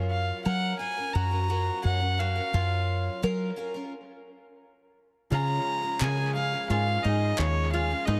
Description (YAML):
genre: indie folk with a building arrangement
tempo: 87 BPM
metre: 4/4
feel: straight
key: Db major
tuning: A4 = 440 Hz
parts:
  - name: picked twelve-string acoustic guitar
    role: accompaniment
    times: 0.0-8.2 s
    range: Ab2 to Bb4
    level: -40 LUFS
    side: equal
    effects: dub echo
  - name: bowl-back mandolin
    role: arpeggios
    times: 0.0-8.2 s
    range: Eb4 to Bb4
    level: -38 LUFS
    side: equal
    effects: dub echo
  - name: deep dub fingered electric bass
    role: bass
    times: 0.0-8.2 s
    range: Eb2 to Gb3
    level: -29 LUFS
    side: equal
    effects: none
  - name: warm fiddle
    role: melody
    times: 0.1-8.2 s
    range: Db5 to Bb5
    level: -32 LUFS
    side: equal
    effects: dub echo
  - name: bright upright piano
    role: accompaniment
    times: 5.3-8.2 s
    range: Ab1 to Eb5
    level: -41 LUFS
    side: equal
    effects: dub echo
  - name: group handclap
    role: percussion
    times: 6.0-7.5 s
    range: none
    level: -40 LUFS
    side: equal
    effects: none
room: light reverb, small room ambience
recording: echo-heavy mix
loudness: -28 LUFS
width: mono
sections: 0.0-5.3 A section; 5.3-8.2 B section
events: stop 3.9-5.3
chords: 0.0 Gbmaj7; 5.3 Db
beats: 0.46 1.15 1.85 | 2.54 3.23 3.93 4.62 | 5.31 6.00 6.70 7.39 | 8.08